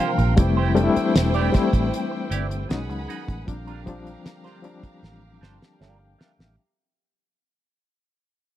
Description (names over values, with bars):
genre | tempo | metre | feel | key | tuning
lush 1970s-style soul | 77 BPM | 4/4 | straight | unclear | A4 = 440 Hz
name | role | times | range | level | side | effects
warm studio violin section | second line | 0.0-6.6 s | C4 to B5 | -32 LUFS | right 1 dB | none
barky reed electric piano | accompaniment | 0.0-6.6 s | E3 to A5 | -24 LUFS | left 4 dB | overdrive, fast tremolo
overdriven tonewheel organ | sustained chords | 0.0-6.6 s | C3 to G#4 | -34 LUFS | right 2 dB | slow rotary speaker
clean electric guitar | riff | 0.0-6.4 s | G3 to D5 | -31 LUFS | right 8 dB | wah
vintage muted fingered electric bass | bass | 0.0-6.6 s | E1 to Db2 | -24 LUFS | right 1 dB | none
damped 70s drum kit | drums | 0.0-6.6 s | hi-hat, kick drum, snare drum | -21 LUFS | right 1 dB | none
room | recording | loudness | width
small room ambience | dry, close 1970s-style studio recording | -19 LUFS | side -12 dB against mid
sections
0.0-6.6 A section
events
fade-out 0.0-6.6; reed electric piano fill 0.0-0.4, 5.0-6.6; drum fill 5.0-6.6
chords
0.4 Fmaj9; 2.7 B6; 3.5 Bb6